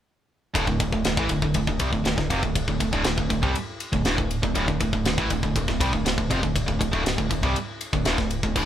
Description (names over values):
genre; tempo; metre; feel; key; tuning
heavy metal; 120 BPM; 4/4; straight; D minor; A4 = 439 Hz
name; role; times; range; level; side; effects
distorted electric guitar; riff; 0.5-8.7 s; D2 to G3; -25 LUFS; right 1 dB; overdrive
metallic FM bass; bass; 0.5-8.7 s; D1 to C2; -30 LUFS; equal; none
tight metal drum kit; drums; 0.6-8.7 s; crash cymbal, kick drum, ride cymbal, snare drum; -25 LUFS; equal; none
room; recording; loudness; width
light reverb; band playing live in one room; -22 LUFS; side -10 dB against mid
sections
0.6-8.7 A section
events
none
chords
0.6 D5